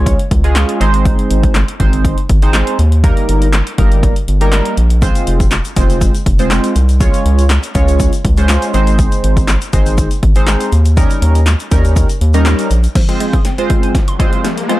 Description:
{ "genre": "dance-pop", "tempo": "121 BPM", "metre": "4/4", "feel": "straight", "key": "Ab major", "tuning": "A4 = 439 Hz", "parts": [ { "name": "chorused polysynth", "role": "accompaniment", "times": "0.0-14.8 s", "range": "G3 to Db5", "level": "-18 LUFS", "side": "right 1 dB", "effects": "sidechain pumping" }, { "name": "round analog bass", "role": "bass", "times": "0.0-12.9 s", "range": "F1 to Eb2", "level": "-12 LUFS", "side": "equal", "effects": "sidechain pumping" }, { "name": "punchy analog drum machine", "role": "drums", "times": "0.1-14.8 s", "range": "crash cymbal, handclaps, hi-hat, kick drum, snare drum", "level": "-14 LUFS", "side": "equal", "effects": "overdrive" }, { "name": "tube shaker", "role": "percussion", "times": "5.0-12.9 s", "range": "none", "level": "-31 LUFS", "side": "left 8 dB", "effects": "none" }, { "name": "glassy wavetable pluck", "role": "arpeggios", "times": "13.0-14.8 s", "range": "F3 to C6", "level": "-23 LUFS", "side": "equal", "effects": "chorus, sidechain pumping, tape echo" }, { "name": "riser", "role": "sound effects", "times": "13.6-14.8 s", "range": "none", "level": "-23 LUFS", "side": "left 2 dB", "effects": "none" } ], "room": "little or no reverb", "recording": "dark, warm production", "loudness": "-10 LUFS", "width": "side -16 dB against mid", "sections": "0.0-13.0 A section; 13.0-14.8 B section", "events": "build-up 13.0-14.8; drum fill 13.0-14.8; riser 13.6-14.8", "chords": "0.0 Db; 0.8 Ab; 3.0 Eb/G; 5.0 Fm; 7.0 Db; 8.7 Ab; 11.0 Eb7; 13.0 Fm" }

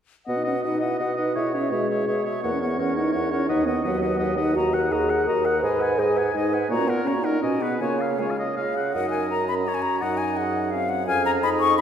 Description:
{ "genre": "quick classical-period movement for wind quintet", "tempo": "168 BPM", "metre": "3/4", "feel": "rubato", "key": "B major, F# major from 4.6 s", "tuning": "A4 = 440 Hz", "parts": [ { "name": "silver concert flute", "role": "melody", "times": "0.3-11.8 s", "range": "D#5 to C#6", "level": "-28 LUFS", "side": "left 5 dB", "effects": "none" }, { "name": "clear oboe", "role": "second line", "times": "0.3-11.8 s", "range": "A#4 to G#5", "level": "-30 LUFS", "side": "left 1 dB", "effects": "none" }, { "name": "mellow French horn", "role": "accompaniment", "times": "0.3-11.8 s", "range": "F#3 to B4", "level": "-25 LUFS", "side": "equal", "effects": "none" }, { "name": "warm clarinet", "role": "accompaniment", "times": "0.3-11.8 s", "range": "E#4 to B4", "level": "-31 LUFS", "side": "right 5 dB", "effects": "none" }, { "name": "mellow bassoon", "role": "bass", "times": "0.3-11.8 s", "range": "D#2 to C#3", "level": "-27 LUFS", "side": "right 2 dB", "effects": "none" } ], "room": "wet concert hall reverb, RT60 2.5 s", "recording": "heard from further back in the room", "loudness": "-21 LUFS", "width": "side -8 dB against mid", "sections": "0.3-8.9 A section; 8.9-11.8 B section", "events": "none", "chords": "0.3 B; 1.4 C#m/B; 2.4 F#7/E; 3.5 B/D#; 4.6 D#m; 5.6 G#m7; 6.7 F#/A#; 7.4 G#m7/B; 7.8 C#; 8.9 F#; 10.0 G#7/F#; 11.1 C#/E#" }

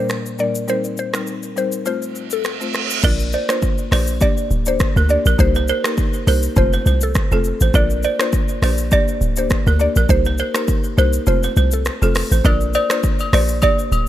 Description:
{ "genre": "afrobeats", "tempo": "102 BPM", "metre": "4/4", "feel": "swing 55% on 16ths", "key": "Bb major", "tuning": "A4 = 439 Hz", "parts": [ { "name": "mallet-like synth pluck", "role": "melody", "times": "0.0-13.8 s", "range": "A4 to D5", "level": "-23 LUFS", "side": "equal", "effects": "chorus, phaser, digital delay" }, { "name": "buzzing marimba with medium mallets", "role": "accompaniment", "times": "0.0-13.8 s", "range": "Bb2 to D5", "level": "-24 LUFS", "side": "left 3 dB", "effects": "none" }, { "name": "afro-pop drum kit", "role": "drums", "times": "0.1-14.1 s", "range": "crash cymbal, finger snaps, hi-hat, kick drum, rim click, shaker", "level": "-20 LUFS", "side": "equal", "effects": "gated reverb" }, { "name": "reverse cymbal", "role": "sound effects", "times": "2.2-3.0 s", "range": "none", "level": "-26 LUFS", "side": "right 8 dB", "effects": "none" }, { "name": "balafon", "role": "riff", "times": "3.0-13.8 s", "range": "A4 to D5", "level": "-25 LUFS", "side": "right 6 dB", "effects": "digital delay" }, { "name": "short 808-style bass", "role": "bass", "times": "3.0-14.1 s", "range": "D1 to D2", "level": "-17 LUFS", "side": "equal", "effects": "none" }, { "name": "agogo bells", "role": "percussion", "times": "12.5-14.1 s", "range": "none", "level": "-26 LUFS", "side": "left 6 dB", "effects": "none" } ], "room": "little or no reverb", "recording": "bright 1980s-style digital production", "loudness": "-15 LUFS", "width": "side -13 dB against mid", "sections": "0.0-3.0 A section; 3.0-14.1 B section", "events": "kick muted 0.7-3.0, 11.3-12.4; reverse cymbal 2.2-3.0", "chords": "0.0 Gm/Bb; 0.7 Cm7; 1.9 F; 3.0 Bb; 3.9 Gm; 5.4 Cm7; 6.6 F; 7.7 Bb; 8.6 Gm; 10.1 Cm7; 11.3 F; 12.4 Bb; 13.3 Gm" }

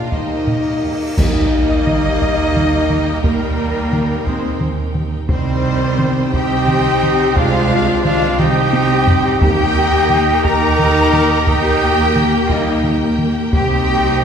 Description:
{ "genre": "cinematic, epic orchestral film score", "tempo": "58 BPM (dotted quarters)", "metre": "6/8", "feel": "straight", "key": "Eb major", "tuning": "A4 = 439 Hz", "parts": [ { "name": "warm symphonic violin section", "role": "melody", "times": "0.0-14.2 s", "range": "Bb4 to Bb5", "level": "-25 LUFS", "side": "left 2 dB", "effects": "none" }, { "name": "bright concert flute", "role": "second line", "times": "0.0-14.2 s", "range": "Bb4 to Bb5", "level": "-24 LUFS", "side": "left 2 dB", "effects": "none" }, { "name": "dark chamber violin section", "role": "second line", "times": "0.0-14.2 s", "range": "Bb4 to Bb5", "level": "-27 LUFS", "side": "left 4 dB", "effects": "none" }, { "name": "clear symphonic viola section", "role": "accompaniment", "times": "0.0-14.2 s", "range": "Eb3 to C5", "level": "-24 LUFS", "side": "equal", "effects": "none" }, { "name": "mellow French horn section", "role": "sustained chords", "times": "0.0-14.2 s", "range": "Bb3 to Bb4", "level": "-23 LUFS", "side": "left 5 dB", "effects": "none" }, { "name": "warm symphonic string section", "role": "sustained chords", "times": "0.0-14.2 s", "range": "Bb3 to G5", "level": "-24 LUFS", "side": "equal", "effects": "none" }, { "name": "mellow trumpet", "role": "stabs", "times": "0.0-14.2 s", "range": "G3 to G4", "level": "-23 LUFS", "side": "right 3 dB", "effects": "none" }, { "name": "warm symphonic cello section", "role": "bass", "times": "0.0-14.2 s", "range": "Eb2 to Bb4", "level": "-21 LUFS", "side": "right 2 dB", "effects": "none" }, { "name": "timpani", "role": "percussion", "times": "0.0-2.2, 9.4-10.4 s", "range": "Eb3", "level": "-24 LUFS", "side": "left 1 dB", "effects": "none" }, { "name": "cymbal swell and sub drop", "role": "sound effects", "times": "0.6-3.2 s", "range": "none", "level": "-28 LUFS", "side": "equal", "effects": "none" }, { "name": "rich chamber double bass section", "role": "bass", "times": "0.1-14.2 s", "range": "C2 to Eb2", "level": "-21 LUFS", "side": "right 3 dB", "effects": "none" }, { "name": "solo taiko drums", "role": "drums", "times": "0.1-14.2 s", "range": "none", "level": "-20 LUFS", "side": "equal", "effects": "none" }, { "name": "clash cymbals and concert bass drum", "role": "percussion", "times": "1.2-2.5 s", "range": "none", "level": "-24 LUFS", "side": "equal", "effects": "none" } ], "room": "wet scoring stage reverb, RT60 2.0 s", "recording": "heard from further back in the room", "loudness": "-13 LUFS", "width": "side -7 dB against mid", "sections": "0.0-1.2 A section; 1.2-14.2 B section", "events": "cymbal swell 0.6-1.2; band accent 1.2-1.9; impact 1.2-3.2; drum fill 8.4-9.4", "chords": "0.0 Eb; 5.3 Cm; 9.4 Eb; 13.5 Cm" }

